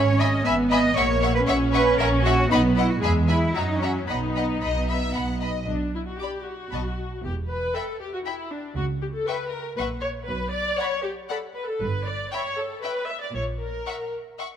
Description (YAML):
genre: quick classical-period movement for string orchestra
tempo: 117 BPM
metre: 3/4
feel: straight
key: B major, B minor from 5.7 s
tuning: A4 = 440 Hz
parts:
  - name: rich studio violin section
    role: melody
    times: 0.0-14.5 s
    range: A#5 to D6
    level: -31 LUFS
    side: left 4 dB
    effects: none
  - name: rich studio viola section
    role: accompaniment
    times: 0.0-14.1 s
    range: F#3 to E5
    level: -27 LUFS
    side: equal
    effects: none
  - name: rich studio double bass section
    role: bass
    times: 0.0-13.8 s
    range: E1 to F#2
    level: -26 LUFS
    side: right 2 dB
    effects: none
  - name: rich symphonic cello section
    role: bass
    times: 0.0-13.8 s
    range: E2 to E5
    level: -26 LUFS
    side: right 2 dB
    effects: none
  - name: rich symphonic violin section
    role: second line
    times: 0.2-14.5 s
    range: D5 to B5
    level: -31 LUFS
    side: left 5 dB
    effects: none
room: moderate concert hall reverb, RT60 1.9 s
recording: none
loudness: -22 LUFS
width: side -9 dB against mid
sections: 0.0-5.7 A section; 5.7-14.6 A section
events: none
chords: 0.0 E/G#; 1.0 F#7/A#; 2.5 B; 3.0 E; 3.5 F#7; 4.1 B; 5.7 Bm; 6.7 B5; 7.2 Em; 8.8 N.C.; 9.8 F#/A# (rootless); 10.3 Bm; 11.8 Em/G (rootless); 13.4 N.C.